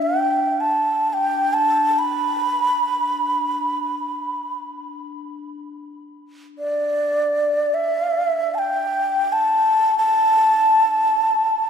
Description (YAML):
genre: world meditative, free-time meditation music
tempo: free time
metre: none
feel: none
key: unclear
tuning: A4 = 440 Hz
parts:
  - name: breathy mellow xiao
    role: melody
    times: 0.0-11.7 s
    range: D5 to B5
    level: -18 LUFS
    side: equal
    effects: ping-pong delay
  - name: bronze singing bowl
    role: texture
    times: 0.0-4.1 s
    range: D4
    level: -34 LUFS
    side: left 6 dB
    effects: none
room: wet concert hall reverb, RT60 2.3 s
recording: none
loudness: -17 LUFS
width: side -7 dB against mid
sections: 0.0-11.7 A section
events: none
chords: none